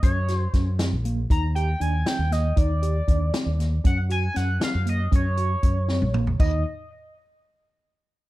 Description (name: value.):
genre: progressive instrumental, band music in an uneven meter.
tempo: 236 BPM (eighths).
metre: 5/8.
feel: straight.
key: unclear.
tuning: A4 = 440 Hz.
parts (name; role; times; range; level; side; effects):
sync lead; melody; 0.0-6.6 s; Db5 to Bb5; -30 LUFS; right 1 dB; chorus, tape echo.
bright tine electric piano; arpeggios; 0.0-6.6 s; Bb3 to G4; -32 LUFS; right 1 dB; medium stereo tremolo.
fingered electric bass; bass; 0.0-6.6 s; Bb1 to Gb2; -24 LUFS; equal; none.
vintage drum kit; drums; 0.0-6.5 s; crash cymbal, hi-hat, kick drum, snare drum, toms; -23 LUFS; equal; none.
room: little or no reverb.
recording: dark, warm production.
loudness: -21 LUFS.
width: side -17 dB against mid.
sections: 0.0-6.4 A section; 6.4-7.7 B section.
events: drum fill 5.9-6.4.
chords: 0.0 Gb; 1.3 Ebmaj7; 3.8 Gb; 6.4 N.C..